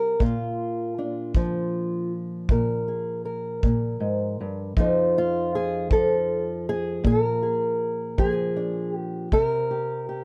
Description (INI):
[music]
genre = acoustic country blues, solo or duo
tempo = 53 BPM (dotted quarters)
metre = 12/8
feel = straight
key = unclear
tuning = A4 = 436 Hz
[part]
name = fingerpicked old ladder-braced acoustic guitar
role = melody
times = 0.0-10.2 s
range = F2 to C5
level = -26 LUFS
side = equal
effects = none
[part]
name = kick drum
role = drums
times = 0.2-9.5 s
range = none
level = -25 LUFS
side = equal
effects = none
[sound]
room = light reverb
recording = none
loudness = -25 LUFS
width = mono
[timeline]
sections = 0.0-10.2 A section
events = none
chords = 0.2 Bb7; 4.8 F7; 7.1 Bb7; 9.3 C7(no3)